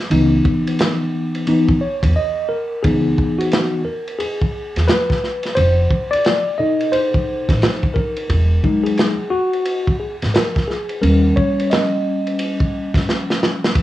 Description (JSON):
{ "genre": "hip hop, jazz-hop", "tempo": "88 BPM", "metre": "4/4", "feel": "swing 63% on 16ths", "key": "C# dorian", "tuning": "A4 = 440 Hz", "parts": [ { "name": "crunchy breakbeat drum kit", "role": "drums", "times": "0.0-13.8 s", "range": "hi-hat, kick drum, ride cymbal, snare drum", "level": "-20 LUFS", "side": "equal", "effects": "none" }, { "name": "mellow tine electric piano", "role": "accompaniment", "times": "0.1-13.7 s", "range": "B2 to D#5", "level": "-18 LUFS", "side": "left 1 dB", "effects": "medium stereo tremolo, plate reverb" }, { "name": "upright bass", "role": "bass", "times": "0.1-13.0 s", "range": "E1 to G2", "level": "-17 LUFS", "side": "equal", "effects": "none" } ], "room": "moderate small room ambience, RT60 0.5 s", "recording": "worn, warbling old tape, cassette tape, warbly pitch drift, small room ambience", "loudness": "-15 LUFS", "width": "side -14 dB against mid", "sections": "0.0-2.8 A section; 2.8-13.8 B section", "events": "tine electric piano solo 0.0-2.8, 2.8-13.8; break 2.2-2.8; drum fill 13.1-13.8", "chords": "0.0 C#m7; 2.8 C#m7 (rootless); 5.6 F7#11 (rootless); 8.3 Emaj7 (rootless); 11.0 D#7" }